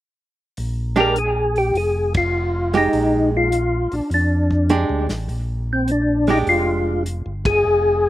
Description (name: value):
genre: soul jazz organ trio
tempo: 102 BPM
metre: 4/4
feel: swing 67% on 8ths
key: Bb mixolydian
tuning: A4 = 440 Hz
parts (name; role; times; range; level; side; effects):
- mellow tonewheel organ; bass; 0.6-8.1 s; F1 to F2; -23 LUFS; equal; slow rotary speaker
- warm soul drum kit; drums; 0.6-7.5 s; hi-hat, kick drum, ride cymbal, snare drum; -29 LUFS; equal; none
- percussive tonewheel organ; melody; 1.0-8.1 s; C4 to Bb4; -18 LUFS; left 1 dB; slow rotary speaker, chorus vibrato
- archtop guitar, miked and amplified; accompaniment; 1.0-7.0 s; Ab3 to G4; -20 LUFS; right 4 dB; slapback echo
room: little or no reverb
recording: recorded outdoors, with no room sound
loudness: -17 LUFS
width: side -14 dB against mid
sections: 0.6-8.1 A section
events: band accent 2.0, 7.4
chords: 0.6 Bb6